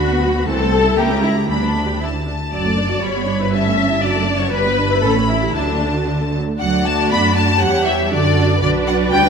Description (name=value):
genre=quick classical-period movement for string orchestra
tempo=119 BPM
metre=2/4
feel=straight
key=D major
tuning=A4 = 441 Hz
part: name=clear studio violin section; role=melody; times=0.0-9.3 s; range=D5 to B5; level=-21 LUFS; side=left 4 dB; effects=none
part: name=warm studio violin section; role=second line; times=0.0-9.3 s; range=D4 to E5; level=-20 LUFS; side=left 4 dB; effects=none
part: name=warm studio viola section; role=accompaniment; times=0.0-9.3 s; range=E3 to G4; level=-21 LUFS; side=right 3 dB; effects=none
part: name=dark studio cello section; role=bass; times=0.0-9.2 s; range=C2 to B3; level=-22 LUFS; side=right 3 dB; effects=none
part: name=rich studio double bass section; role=bass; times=0.0-9.3 s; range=F#1 to F#2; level=-22 LUFS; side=right 2 dB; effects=none
room=moderate scoring stage reverb, RT60 1.9 s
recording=none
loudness=-14 LUFS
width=side -6 dB against mid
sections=0.0-6.6 A section; 6.6-9.3 B section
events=none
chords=0.5 Am/C; 1.0 C#dim7; 1.5 G/D; 2.0 D5; 2.5 D/F#; 3.0 Em7/G; 3.5 A7/G; 4.0 D/F#; 4.5 Em7/G; 5.0 A9; 5.6 D; 7.6 C#dim/E; 8.1 D/F#; 8.6 Bm